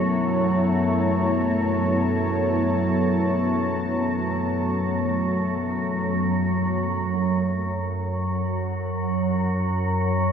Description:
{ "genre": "dark ambient drone", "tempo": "free time", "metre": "none", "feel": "none", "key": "F# minor", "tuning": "A4 = 439 Hz", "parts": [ { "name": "dark analog pad", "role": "sustained chords", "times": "0.0-10.3 s", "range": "F#3 to A5", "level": "-24 LUFS", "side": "left 1 dB", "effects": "chorus, shimmer reverb" }, { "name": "gamelan-type bossed gongs", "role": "arpeggios", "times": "0.0-5.3 s", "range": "none", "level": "barely audible", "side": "none", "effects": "none" }, { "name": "organ-like drone", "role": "drone", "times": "0.0-10.3 s", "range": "F#2 to F#3", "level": "-23 LUFS", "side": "right 1 dB", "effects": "ensemble chorus, built-in reverb" }, { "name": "bubbling stepped-filter texture", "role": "texture", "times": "0.0-7.2 s", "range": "A3", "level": "-31 LUFS", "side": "equal", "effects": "chorus, built-in reverb, shimmer reverb" } ], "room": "wet spring reverb, RT60 2.6 s", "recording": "echo-heavy mix, faint mains hum", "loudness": "-21 LUFS", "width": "side -7 dB against mid", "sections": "0.0-7.1 A section; 7.1-10.3 B section", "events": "none", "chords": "0.0 F#m" }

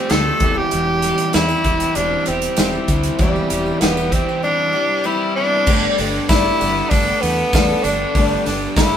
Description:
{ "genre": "folk rock and heartland rock", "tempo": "97 BPM", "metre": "4/4", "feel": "straight", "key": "G major", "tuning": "A4 = 437 Hz", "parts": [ { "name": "bright tenor saxophone", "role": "melody", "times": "0.0-9.0 s", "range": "G3 to A4", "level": "-19 LUFS", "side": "equal", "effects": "none" }, { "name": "picked twelve-string acoustic guitar", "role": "accompaniment", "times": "0.0-9.0 s", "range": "G2 to G4", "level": "-24 LUFS", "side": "left 4 dB", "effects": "none" }, { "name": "crunchy overdriven guitar", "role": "riff", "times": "0.0-9.0 s", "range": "E2 to A4", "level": "-23 LUFS", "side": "equal", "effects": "none" }, { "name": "fingered electric bass", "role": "bass", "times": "0.1-9.0 s", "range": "E1 to E2", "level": "-25 LUFS", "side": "equal", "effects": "none" }, { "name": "natural country drum kit", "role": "drums", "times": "0.1-8.9 s", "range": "crash cymbal, hi-hat, kick drum, snare drum", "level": "-19 LUFS", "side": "equal", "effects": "none" }, { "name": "bright tonewheel organ", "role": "sustained chords", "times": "0.7-9.0 s", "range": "G3 to C5", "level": "-33 LUFS", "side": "right 1 dB", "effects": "none" }, { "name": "tambourine", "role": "percussion", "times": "0.7-9.0 s", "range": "none", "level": "-35 LUFS", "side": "right 6 dB", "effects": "none" } ], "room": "moderate studio reverb, RT60 0.6 s", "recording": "band playing live in one room", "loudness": "-15 LUFS", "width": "side -9 dB against mid", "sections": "0.0-5.7 A section; 5.7-9.0 B section", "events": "none", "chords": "0.4 C/E; 5.7 Gadd9" }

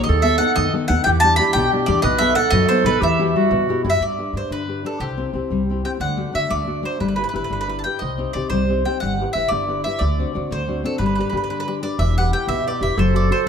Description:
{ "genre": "italian folk, Italian serenade", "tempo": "121 BPM (dotted quarters)", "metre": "6/8", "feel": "straight", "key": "E minor, G major from 4.0 s", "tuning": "A4 = 440 Hz", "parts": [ { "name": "mandolin", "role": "melody", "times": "0.0-13.5 s", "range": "G4 to B5", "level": "-21 LUFS", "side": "equal", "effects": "none" }, { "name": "nylon-string guitar", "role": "accompaniment", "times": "0.0-13.5 s", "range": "B2 to C5", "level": "-23 LUFS", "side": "left 4 dB", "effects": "none" }, { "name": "upright bass", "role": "bass", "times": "0.0-13.3 s", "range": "E1 to G2", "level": "-23 LUFS", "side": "equal", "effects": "none" }, { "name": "warm clarinet", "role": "second line", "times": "0.1-3.9, 12.0-13.5 s", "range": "E4 to B4", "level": "-22 LUFS", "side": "right 7 dB", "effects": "none" } ], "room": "moderate concert hall reverb, RT60 1.7 s", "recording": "none", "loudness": "-17 LUFS", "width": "side -7 dB against mid", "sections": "0.0-4.0 A section; 4.0-12.0 B section; 12.0-13.5 A section", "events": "break 11.5-12.0", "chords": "0.1 B7/D#; 1.1 Em7; 2.0 B7; 3.0 Emadd9; 4.0 G; 5.0 C; 6.0 D; 7.0 G6; 8.0 Cm; 9.0 G6; 10.0 D7; 11.0 G; 12.0 Em; 13.0 F#dim" }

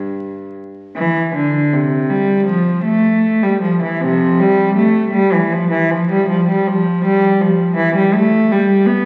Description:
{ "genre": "classical, baroque-style suite movement for unaccompanied cello", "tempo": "69-84 BPM", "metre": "4/4", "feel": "rubato", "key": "unclear", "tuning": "A4 = 440 Hz", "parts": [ { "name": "dark cello", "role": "solo", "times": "0.0-9.1 s", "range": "G2 to B3", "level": "-15 LUFS", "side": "equal", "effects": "none" } ], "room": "wet recital hall reverb, RT60 1.8 s", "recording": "very old 78 rpm record, vinyl crackle", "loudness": "-15 LUFS", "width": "mono", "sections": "1.0-9.1 A section", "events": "none", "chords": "none" }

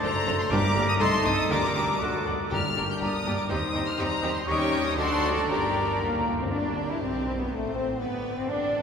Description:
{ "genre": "quick classical-period movement for symphony orchestra", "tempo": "113-126 BPM", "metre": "2/4", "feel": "rubato", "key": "G minor", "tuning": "A4 = 440 Hz", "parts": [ { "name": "rich chamber violin section", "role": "melody", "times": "0.0-8.8 s", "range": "B4 to G6", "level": "-31 LUFS", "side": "left 2 dB", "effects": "none" }, { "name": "clear chamber violin section", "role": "second line", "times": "0.0-8.8 s", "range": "G4 to G5", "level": "-37 LUFS", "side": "left 1 dB", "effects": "none" }, { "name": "silver concert flute", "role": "second line", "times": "0.0-6.3 s", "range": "A5 to Db6", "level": "-33 LUFS", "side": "left 1 dB", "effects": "none" }, { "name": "warm clarinet", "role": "second line", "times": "0.0-6.3 s", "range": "F#4 to A4", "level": "-36 LUFS", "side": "equal", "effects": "none" }, { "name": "warm oboe", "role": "second line", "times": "0.0-6.2 s", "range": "D5 to F#5", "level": "-36 LUFS", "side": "right 2 dB", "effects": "none" }, { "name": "rich chamber viola section", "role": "accompaniment", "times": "0.0-8.8 s", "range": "A3 to G4", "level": "-34 LUFS", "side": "right 1 dB", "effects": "none" }, { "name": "mellow French horn section", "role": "sustained chords", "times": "0.0-8.8 s", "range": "F#3 to E4", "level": "-31 LUFS", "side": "left 2 dB", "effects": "none" }, { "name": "mellow trumpet", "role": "stabs", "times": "0.0-6.3 s", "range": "A4 to Db5", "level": "-34 LUFS", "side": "right 1 dB", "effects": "none" }, { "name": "clear chamber double bass section", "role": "bass", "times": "0.0-8.8 s", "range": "F#1 to Eb2", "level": "-35 LUFS", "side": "right 2 dB", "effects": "none" }, { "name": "rich studio cello section", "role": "bass", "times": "0.0-8.8 s", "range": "C2 to E4", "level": "-34 LUFS", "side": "right 2 dB", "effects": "none" }, { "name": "timpani", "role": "percussion", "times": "0.5-3.2, 5.5-6.5 s", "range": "G2 to D3", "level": "-36 LUFS", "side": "equal", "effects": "none" } ], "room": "wet cathedral reverb, RT60 4.9 s", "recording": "minimal, uncompressed stereo recording", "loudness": "-24 LUFS", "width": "side -6 dB against mid", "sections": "0.0-6.5 A section; 6.5-8.8 B section", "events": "timpani fill 5.5-6.5", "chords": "0.0 D7/F#; 0.5 Gm; 1.0 Adim; 1.5 Gm/D; 2.0 D; 2.5 Gm; 3.5 Cm/Eb; 4.5 Eb7; 5.0 D7; 5.5 Gm; 6.5 G; 7.5 Am; 8.0 G" }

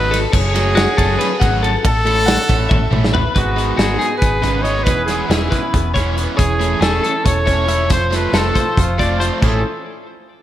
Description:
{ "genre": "math rock and midwest emo", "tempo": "277 BPM (eighths)", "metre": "7/8", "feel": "straight", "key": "A lydian", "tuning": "A4 = 441 Hz", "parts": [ { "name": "clear trumpet", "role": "melody", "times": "0.0-9.6 s", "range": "E4 to C#5", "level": "-20 LUFS", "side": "equal", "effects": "none" }, { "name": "twelve-string electric guitar", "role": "arpeggios", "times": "0.0-9.6 s", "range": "F#4 to F#5", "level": "-22 LUFS", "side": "left 4 dB", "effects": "harmonic tremolo, digital delay" }, { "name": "raw garage guitar", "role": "riff", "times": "0.0-9.6 s", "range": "A2 to F#4", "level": "-24 LUFS", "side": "right 1 dB", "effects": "overdrive" }, { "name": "hollow-body short-scale fingered electric bass", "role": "bass", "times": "0.0-9.6 s", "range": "E1 to A1", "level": "-20 LUFS", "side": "equal", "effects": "none" }, { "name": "loose indie drum kit", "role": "drums", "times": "0.1-9.5 s", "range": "crash cymbal, hi-hat, kick drum, ride cymbal, snare drum, toms", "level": "-18 LUFS", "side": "equal", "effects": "none" }, { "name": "twangy electric guitar", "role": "accompaniment", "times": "3.4-9.6 s", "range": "G#2 to G#4", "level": "-26 LUFS", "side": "right 6 dB", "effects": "slapback echo" } ], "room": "moderate lush hall reverb, RT60 1.7 s, small room ambience", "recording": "big arena sound", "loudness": "-13 LUFS", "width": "side -12 dB against mid", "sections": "0.0-3.4 A section; 3.4-9.4 B section; 9.4-10.4 C section", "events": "drum fill 2.7-3.4", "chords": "0.3 F#madd9; 1.8 A; 3.4 G#m7; 4.9 E6; 6.4 Amaj7/E; 7.9 F; 9.4 Amaj7" }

